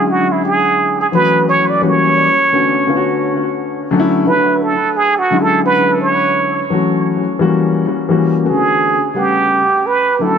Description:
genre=hip hop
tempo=86 BPM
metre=4/4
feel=swing 61% on 16ths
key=B dorian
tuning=A4 = 440 Hz
part: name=trumpet with plunger mute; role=melody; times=0.0-10.4 s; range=E4 to D5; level=-13 LUFS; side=right 3 dB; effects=analog delay
part: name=warm concert grand piano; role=accompaniment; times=0.0-10.4 s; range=C#3 to F#5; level=-15 LUFS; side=left 3 dB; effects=analog delay
room=moderate spring reverb, RT60 1.8 s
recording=echo-heavy mix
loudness=-12 LUFS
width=side -7 dB against mid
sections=0.0-8.5 A section; 8.5-10.4 B section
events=muted trumpet solo 0.0-8.5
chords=0.0 E13; 1.5 A6; 2.2 Bm9; 3.6 Dmaj9; 5.3 E13; 7.1 A6; 7.8 F#7b9; 8.5 Bm9; 9.2 A13; 9.8 Dmaj9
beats=| 0.08 0.78 1.48 2.17 | 2.87 3.57 4.27 4.97 | 5.66 6.36 7.06 7.76 | 8.45 9.15 9.85

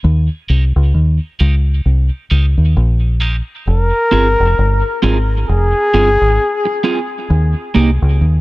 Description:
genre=dub reggae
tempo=66 BPM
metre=4/4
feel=swing 59% on 16ths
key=unclear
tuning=A4 = 439 Hz
part: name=deep dub fingered electric bass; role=bass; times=0.0-8.4 s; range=F1 to Eb2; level=-12 LUFS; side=equal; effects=none
part: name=electric guitar at the edge of break-up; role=accompaniment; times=0.5-7.9 s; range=Bb3 to Ab4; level=-20 LUFS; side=right 4 dB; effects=high-pass filter, dub echo
part: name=warm flugelhorn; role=melody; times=3.7-6.8 s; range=Ab4 to Bb4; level=-16 LUFS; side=left 1 dB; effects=dub echo
room=light reverb, small room ambience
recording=none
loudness=-12 LUFS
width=side -20 dB against mid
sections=0.0-8.4 A section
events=break 0.0-3.7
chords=0.0 Eb; 3.7 Fm; 7.3 Eb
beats=| 0.04 0.95 1.85 2.76 | 3.67 4.58 5.48 6.39 | 7.30 8.21

